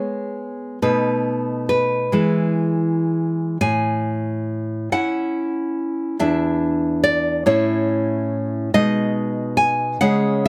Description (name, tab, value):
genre	romantic piece for solo classical guitar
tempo	38-48 BPM (dotted quarters)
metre	6/8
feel	rubato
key	unclear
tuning	A4 = 440 Hz
part	nylon-string guitar	solo	0.0-10.5 s	E2 to G#5	-20 LUFS	equal	none
room	light reverb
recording	none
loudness	-21 LUFS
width	mono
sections	0.0-10.5 A section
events	none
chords	0.0 E (rootless); 0.8 B7; 2.1 E; 3.6 A; 6.2 Dsus2/E; 7.5 A; 8.7 G#m/B